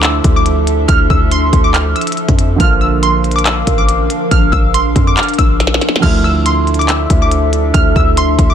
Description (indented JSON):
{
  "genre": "hip hop, trap",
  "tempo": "140 BPM",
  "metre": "4/4",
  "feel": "half-time",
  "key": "D minor",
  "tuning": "A4 = 440 Hz",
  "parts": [
    { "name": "glassy wavetable pluck", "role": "melody", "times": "0.0-8.5 s", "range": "C6 to F6", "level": "-17 LUFS", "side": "equal", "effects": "chorus, low-pass filter" },
    { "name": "dark grand piano", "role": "accompaniment", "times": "0.0-8.5 s", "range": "D3 to F4", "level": "-21 LUFS", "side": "right 7 dB", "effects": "low-pass filter" },
    { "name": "warbly tape-like pad", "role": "sustained chords", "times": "0.0-8.5 s", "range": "F3 to F5", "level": "-18 LUFS", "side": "equal", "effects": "chorus, built-in reverb, phaser" },
    { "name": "hard-hitting 808-style bass", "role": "bass", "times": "0.0-8.5 s", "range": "A1 to F2", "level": "-15 LUFS", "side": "equal", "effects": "none" },
    { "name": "glitchy drum kit", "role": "drums", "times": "0.0-8.5 s", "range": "crash cymbal, handclaps, hi-hat, kick drum, snare drum", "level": "-14 LUFS", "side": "equal", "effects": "none" }
  ],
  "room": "digital ambience",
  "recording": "none",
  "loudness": "-10 LUFS",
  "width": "side -9 dB against mid",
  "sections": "0.0-8.5 A section",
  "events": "drum fill 5.6-6.0",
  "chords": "0.0 Dmadd9; 2.6 Bb; 6.0 Dmadd9",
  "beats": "0.03 0.46 | 0.89 1.31 1.74 2.17 | 2.60 3.03 3.46 3.89 | 4.31 4.74 5.17 5.60 | 6.03 6.46 6.89 7.31 | 7.74 8.17"
}